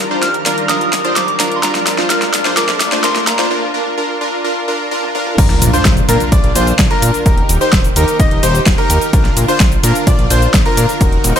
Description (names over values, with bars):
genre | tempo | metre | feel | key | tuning
EDM, festival progressive house | 128 BPM | 4/4 | straight | Bb major | A4 = 439 Hz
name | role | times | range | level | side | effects
soft synth bell | melody | 0.0-3.4 s | Bb5 to F6 | -19 LUFS | equal | chorus, dub echo
lush unison pad | sustained chords | 0.0-11.4 s | D3 to Bb4 | -25 LUFS | right 1 dB | chorus, sidechain pumping
supersaw stab | riff | 0.0-11.4 s | D4 to Eb5 | -18 LUFS | equal | sidechain pumping, dub echo
riser and impact | sound effects | 0.0-7.3 s | none | -23 LUFS | equal | none
big-room dance drum kit | drums | 0.2-11.4 s | crash cymbal, hi-hat, shaker, snare drum, toms | -18 LUFS | equal | overdrive, high-pass filter on snare, studio reverb, high-pass filter on hats, high-pass filter on toms, high-pass filter on cymbals, high-pass filter on perc
clear baby grand piano | arpeggios | 5.4-11.4 s | Bb4 to Eb5 | -19 LUFS | left 1 dB | sidechain pumping, dub echo
fat analog bass | bass | 5.4-11.3 s | Eb1 to Bb2 | -16 LUFS | equal | sidechain pumping
electronic kick drum | drums | 5.4-11.1 s | none | -13 LUFS | equal | overdrive, studio reverb
room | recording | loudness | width
light reverb | high-pass filter | -11 LUFS | side -8 dB against mid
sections
0.0-5.4 A section; 5.4-11.4 B section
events
build-up 0.0-5.4; drum fill 0.0-3.5, 5.0-5.4; riser 0.0-3.5; break 3.5-5.4; drop 5.4-11.4; impact 5.4-7.3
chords
0.0 Eb; 1.6 Bb; 3.5 Bb/D; 5.4 Bb; 7.3 Eb; 9.1 Bb